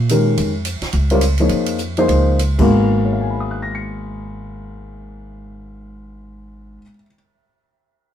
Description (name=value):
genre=modal jazz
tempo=185-218 BPM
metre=4/4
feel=swing 60% on 8ths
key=G# dorian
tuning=A4 = 440 Hz
part: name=upright bass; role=bass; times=0.0-6.8 s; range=G#1 to A#2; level=-20 LUFS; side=right 1 dB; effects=none
part: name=dark baby grand piano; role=accompaniment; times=0.1-7.1 s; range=G#2 to C#7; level=-18 LUFS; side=left 1 dB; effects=none
part: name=compact cocktail drum kit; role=drums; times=0.1-2.6 s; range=crash cymbal, hi-hat, kick drum, ride cymbal, snare drum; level=-26 LUFS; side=right 3 dB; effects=none
room=moderate studio ambience, RT60 0.5 s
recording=band playing live in one room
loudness=-15 LUFS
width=side -10 dB against mid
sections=0.0-2.7 A section; 2.7-5.3 B section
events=slowing down 0.4-2.7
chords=0.0 A#m9; 2.6 G#m9